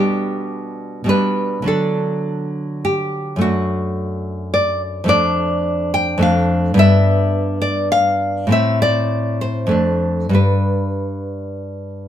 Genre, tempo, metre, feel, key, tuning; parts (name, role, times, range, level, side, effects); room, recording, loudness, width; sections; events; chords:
romantic piece for solo classical guitar; 93-112 BPM; 3/4; rubato; A4 = 440 Hz
nylon-string guitar; solo; 0.0-12.1 s; F2 to G5; -16 LUFS; equal
light reverb; band playing live in one room; -16 LUFS; side -10 dB against mid
0.0-12.1 A section
0.0 G/B; 1.7 D; 3.4 D/F#; 5.1 Dm/F; 6.8 G; 8.5 Am; 9.7 Dm/F; 10.4 G